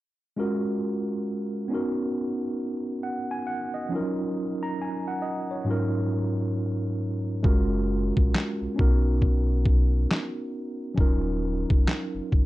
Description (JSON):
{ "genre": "lo-fi hip hop", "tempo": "68 BPM", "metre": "4/4", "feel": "swing 62% on 16ths", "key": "unclear", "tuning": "A4 = 440 Hz", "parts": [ { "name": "mellow tine electric piano", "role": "accompaniment", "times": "0.4-12.5 s", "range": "Ab2 to Bb5", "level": "-27 LUFS", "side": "right 1 dB", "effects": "fast stereo tremolo, cassette tape, plate reverb" }, { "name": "sub bass with octave", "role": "bass", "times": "7.4-12.5 s", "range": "Eb1 to Cb2", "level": "-26 LUFS", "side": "equal", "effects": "none" }, { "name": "boom bap sampler-style drum kit", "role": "drums", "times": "7.4-12.5 s", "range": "handclaps, kick drum, snare drum", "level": "-21 LUFS", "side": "equal", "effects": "none" } ], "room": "moderate studio reverb, RT60 0.6 s", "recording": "dark, warm production", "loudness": "-24 LUFS", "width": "side -17 dB against mid", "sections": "0.4-7.4 A section; 7.4-12.5 B section", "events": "hi-hats muted 7.4-12.5", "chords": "0.4 Gbmaj7; 1.7 Bmaj9; 3.9 Ebm7; 5.7 Ab13sus4; 7.4 Gbmaj7; 8.8 Bmaj9; 11.0 Ebm7" }